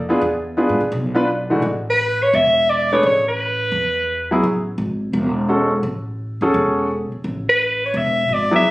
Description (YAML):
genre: jazz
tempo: 171 BPM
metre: 4/4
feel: swing 64% on 8ths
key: A major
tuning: A4 = 441 Hz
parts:
  - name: upright bass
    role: bass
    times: 0.0-8.7 s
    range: E1 to B2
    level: -24 LUFS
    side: equal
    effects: none
  - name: warm concert grand piano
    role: accompaniment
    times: 0.1-8.6 s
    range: G#2 to B4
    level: -17 LUFS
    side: equal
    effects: none
  - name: breathy soprano saxophone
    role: melody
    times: 1.9-4.3, 7.5-8.7 s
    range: B4 to E5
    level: -16 LUFS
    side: equal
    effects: none
room: light reverb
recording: recorded on a phone in the room, studio reverb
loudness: -16 LUFS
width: side -19 dB against mid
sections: 0.0-1.6 A section; 1.6-8.7 B section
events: none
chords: 0.2 E7b9; 1.6 Amaj7sus2